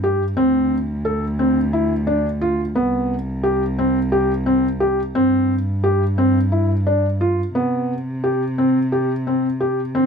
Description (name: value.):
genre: contemporary instrumental, chamber music in an uneven meter.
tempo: 176 BPM (eighths).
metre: 7/8.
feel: straight.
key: C major.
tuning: A4 = 440 Hz.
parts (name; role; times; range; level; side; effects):
felt-muted upright piano; arpeggios; 0.0-10.1 s; B3 to A4; -18 LUFS; equal; none.
dark cello; bass; 0.0-10.1 s; C2 to D3; -22 LUFS; equal; none.
room: light reverb.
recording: dark, warm production.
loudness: -17 LUFS.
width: side -6 dB against mid.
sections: 0.0-7.5 A section; 7.5-10.1 B section.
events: none.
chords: 0.4 D7(no3); 2.8 C5; 5.2 Gsus4; 7.5 C5.